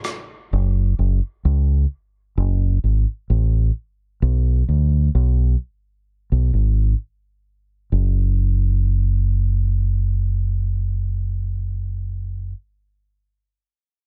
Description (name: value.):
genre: reggae.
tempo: 65 BPM.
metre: 4/4.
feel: straight.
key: unclear.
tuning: A4 = 441 Hz.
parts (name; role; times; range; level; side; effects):
deep dub fingered electric bass; bass; 0.5-12.5 s; F#1 to D2; -20 LUFS; equal; none.
room: little or no reverb.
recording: faint mains hum.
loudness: -20 LUFS.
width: mono.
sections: 0.0-7.9 A section; 7.9-11.6 B section.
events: none.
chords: none.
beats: | 0.51 1.44 2.36 3.29 | 4.21 5.13 6.06 6.98 | 7.91 8.83 9.76 10.68.